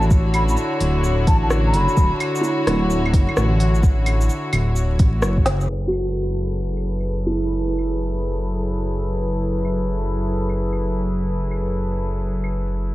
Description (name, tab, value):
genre	future garage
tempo	129 BPM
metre	4/4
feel	swing 64% on 16ths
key	F# minor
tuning	A4 = 440 Hz
part	mellow baroque flute	melody	0.0-2.1 s	A5 to B5	-26 LUFS	equal	analog delay
part	felt-muted upright piano	accompaniment	0.0-12.9 s	D4 to A4	-29 LUFS	right 3 dB	sidechain pumping, analog delay
part	warm studio string section	sustained chords	0.0-12.9 s	D3 to C#5	-24 LUFS	left 1 dB	sidechain pumping, low-pass filter
part	dark detuned saw bass	bass	0.0-12.9 s	D1 to A1	-21 LUFS	equal	sidechain pumping
part	organic electronic drum kit	drums	0.0-12.8 s	claves, hi-hat, rim click, shaker, snare drum	-26 LUFS	equal	studio reverb
part	electronic kick drum	drums	0.1-5.4 s	none	-16 LUFS	equal	studio reverb
room	light reverb, studio reverb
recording	vinyl crackle, low-pass filter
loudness	-18 LUFS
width	side -17 dB against mid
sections	0.0-5.7 A section; 5.7-12.9 B section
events	drum fill 5.5; band accent 5.5; filter sweep 5.7-12.9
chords	0.0 Dmaj9; 5.7 F#m11